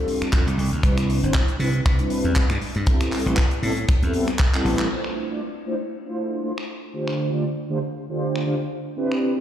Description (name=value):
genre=nu-disco, nu disco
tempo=118 BPM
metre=4/4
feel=swing 55% on 16ths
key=D dorian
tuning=A4 = 444 Hz
part: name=mellow synth brass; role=accompaniment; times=0.0-9.4 s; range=D3 to D5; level=-24 LUFS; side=equal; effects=chorus, sidechain pumping, ping-pong delay
part: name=tight funk drum kit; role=drums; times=0.1-9.2 s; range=crash cymbal, finger snaps, handclaps, hi-hat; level=-31 LUFS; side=equal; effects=low-pass filter on hats, low-pass filter on cymbals, low-pass filter on snare, low-pass filter on room
part: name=slap bass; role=bass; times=0.2-4.9 s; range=G1 to C3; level=-23 LUFS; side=equal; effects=sidechain pumping
part: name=kick drum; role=drums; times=0.3-4.5 s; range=none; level=-20 LUFS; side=equal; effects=none
room=light reverb, studio reverb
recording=played on a big sound system in a bare room, large studio reverb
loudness=-20 LUFS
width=side -10 dB against mid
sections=0.0-4.9 A section; 4.9-9.4 B section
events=drum fill 4.5-4.9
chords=0.0 G9sus4; 0.8 Cmaj9; 2.9 Am9; 4.9 Dm7; 6.7 G9sus4/D